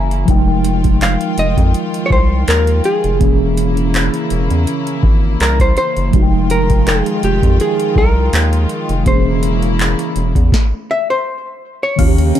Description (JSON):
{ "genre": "contemporary R&B", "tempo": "82 BPM", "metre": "4/4", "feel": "swing 54% on 16ths", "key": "F minor", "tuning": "A4 = 440 Hz", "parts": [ { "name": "mellow tine electric piano", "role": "accompaniment", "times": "0.0-12.4 s", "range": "Eb3 to Bb5", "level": "-19 LUFS", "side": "right 1 dB", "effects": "medium stereo tremolo" }, { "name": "rich studio string section", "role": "sustained chords", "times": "0.0-12.4 s", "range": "Db3 to G5", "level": "-23 LUFS", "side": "left 1 dB", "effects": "none" }, { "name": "round analog bass", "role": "bass", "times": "0.0-12.3 s", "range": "E1 to F2", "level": "-16 LUFS", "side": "equal", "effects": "none" }, { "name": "booming analog drum machine", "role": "drums", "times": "0.1-12.4 s", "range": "crash cymbal, handclaps, hi-hat, kick drum, snare drum", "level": "-14 LUFS", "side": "equal", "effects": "overdrive" }, { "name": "archtop guitar, miked and amplified", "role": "melody", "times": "1.0-12.4 s", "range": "G4 to F5", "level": "-18 LUFS", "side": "equal", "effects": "none" }, { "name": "soft round pluck", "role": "texture", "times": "12.0-12.4 s", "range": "Db4 to F5", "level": "-21 LUFS", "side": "left 2 dB", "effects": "chorus" } ], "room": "digital ambience", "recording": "dark, warm production", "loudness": "-12 LUFS", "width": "side -11 dB against mid", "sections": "0.0-12.0 A section", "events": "tine electric piano fill 0.0; stop 10.5-12.0", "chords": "0.3 Fm9; 3.2 C7b9b13/E (rootless); 6.1 Fm9; 9.1 C7b9b13/E" }